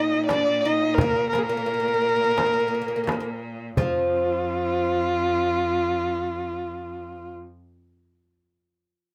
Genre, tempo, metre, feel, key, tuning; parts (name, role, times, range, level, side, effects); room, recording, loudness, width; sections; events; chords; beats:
Turkish makam ensemble; 86 BPM; 4/4; straight; A4 = 440 Hz
rich kamancheh; melody; 0.0-7.3 s; F4 to Eb5; -26 LUFS; equal
oud; second line; 0.0-7.5 s; F3 to Eb4; -30 LUFS; equal
bright cello; drone; 0.0-7.4 s; F2 to Bb2; -36 LUFS; equal
darbuka; percussion; 0.3-4.1 s; -32 LUFS; equal
frame drum; percussion; 0.3-4.1 s; -30 LUFS; equal
light reverb; -24 LUFS; mono
0.0-3.8 A section; 3.8-6.6 B section
0.29 | 0.99 1.69 2.38 3.08 | 3.78 4.48 5.17 5.87